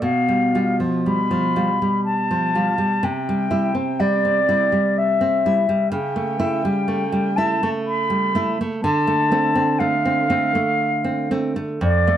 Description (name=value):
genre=romantic duo for flute and classical guitar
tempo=61 BPM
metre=3/4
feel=rubato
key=unclear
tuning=A4 = 445 Hz
part: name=mellow concert flute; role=melody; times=0.0-12.2 s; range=D5 to B5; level=-21 LUFS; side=left 1 dB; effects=plate reverb
part: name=nylon-string guitar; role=accompaniment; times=0.0-12.2 s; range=F2 to F4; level=-20 LUFS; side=right 1 dB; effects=none
room=moderate studio ambience, RT60 0.5 s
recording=dark, warm production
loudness=-18 LUFS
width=side -10 dB against mid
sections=0.0-12.2 A section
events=none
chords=0.0 G7/B; 3.0 C; 5.9 A7/C#; 8.8 Dm7